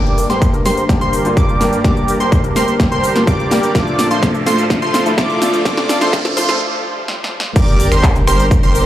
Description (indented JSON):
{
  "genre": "EDM, festival progressive house",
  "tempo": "126 BPM",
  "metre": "4/4",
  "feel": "straight",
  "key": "unclear",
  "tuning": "A4 = 440 Hz",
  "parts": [
    { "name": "warm concert grand piano", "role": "accompaniment", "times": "0.0-6.6 s", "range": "G2 to Bb4", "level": "-21 LUFS", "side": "left 2 dB", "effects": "sidechain pumping, tape echo" },
    { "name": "warm studio string section", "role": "sustained chords", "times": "0.0-8.9 s", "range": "D2 to Bb4", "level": "-23 LUFS", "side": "right 1 dB", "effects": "sidechain pumping" },
    { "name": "plucky unison lead", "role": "arpeggios", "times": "0.0-8.9 s", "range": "C6 to D6", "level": "-21 LUFS", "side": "right 1 dB", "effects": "sidechain pumping, tape echo" },
    { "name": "dense compressed supersaw", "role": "riff", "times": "0.0-8.9 s", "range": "F4 to D5", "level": "-20 LUFS", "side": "right 1 dB", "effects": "sidechain pumping, low-pass filter, tape echo" },
    { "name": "riser, swell and sub drop", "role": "sound effects", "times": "0.0-8.9 s", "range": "none", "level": "-27 LUFS", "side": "right 1 dB", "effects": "none" },
    { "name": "big-room dance drum kit", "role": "drums", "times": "0.1-8.8 s", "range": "crash cymbal, finger snaps, handclaps, hi-hat, shaker, snare drum", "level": "-21 LUFS", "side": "equal", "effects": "overdrive" },
    { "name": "electronic kick drum", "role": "drums", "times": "0.4-8.6 s", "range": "none", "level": "-15 LUFS", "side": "equal", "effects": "overdrive" },
    { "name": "saturated sub bass", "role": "bass", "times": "7.6-8.9 s", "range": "G1", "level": "-17 LUFS", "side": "equal", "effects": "sidechain pumping" }
  ],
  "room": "light reverb, digital ambience",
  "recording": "played on a big sound system in a bare room, large studio reverb, high-pass filter",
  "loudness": "-12 LUFS",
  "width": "side -13 dB against mid",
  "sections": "0.0-7.6 A section; 7.6-8.9 B section",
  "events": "build-up 0.0-7.6; drum fill 0.0-6.6, 7.1-7.6; riser 0.0-6.6; filter sweep on supersaw synth 0.0-7.6; filter sweep 0.0-7.6; break 6.6-7.6; swell 6.6-7.6; drop 7.6-8.9; impact 7.6-8.9",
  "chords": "0.0 Gm; 3.8 Dm; 7.6 Gm"
}